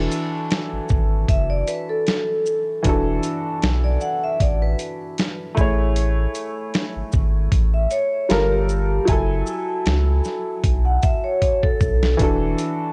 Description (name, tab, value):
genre	lo-fi hip hop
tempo	77 BPM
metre	4/4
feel	swing 55% on 16ths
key	unclear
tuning	A4 = 440 Hz
part	clear upright piano	accompaniment	0.0-12.9 s	E3 to G#5	-28 LUFS	equal	cassette tape
part	saturated sub bass	bass	0.0-12.5 s	E1 to C#2	-23 LUFS	equal	none
part	dusty soul sampler-style drum kit	drums	0.1-12.8 s	hi-hat, kick drum, shaker, snare drum	-24 LUFS	equal	none
part	vibraphone with medium hard mallets	second line	1.3-12.2 s	G4 to F#5	-26 LUFS	equal	tape echo
room	digital ambience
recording	dry, gritty hardware recording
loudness	-21 LUFS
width	mono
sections	0.0-12.9 A section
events	drum fill 11.4-12.2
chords	0.0 E9sus4; 5.6 Amaj7; 8.3 Gm9; 9.1 F#m9; 12.2 E9sus4